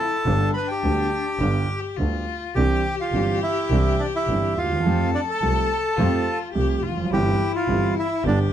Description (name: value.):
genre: tango.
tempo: 105 BPM.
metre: 4/4.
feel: rubato.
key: C major.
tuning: A4 = 441 Hz.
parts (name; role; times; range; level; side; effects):
bandoneon; melody; 0.0-8.4 s; D4 to B5; -25 LUFS; right 1 dB; none.
warm cello; second line; 0.0-8.5 s; D4 to A4; -28 LUFS; left 8 dB; none.
warm grand piano; accompaniment; 0.3-8.5 s; G1 to G4; -25 LUFS; right 3 dB; none.
clear double bass; bass; 0.3-8.5 s; F1 to F2; -24 LUFS; right 1 dB; none.
room: moderate studio reverb, RT60 0.5 s.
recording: dark, warm production.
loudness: -20 LUFS.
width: side -10 dB against mid.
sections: 0.0-8.5 A section.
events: none.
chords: 0.3 G; 2.6 Cadd9; 4.8 Fadd9; 7.1 C/G.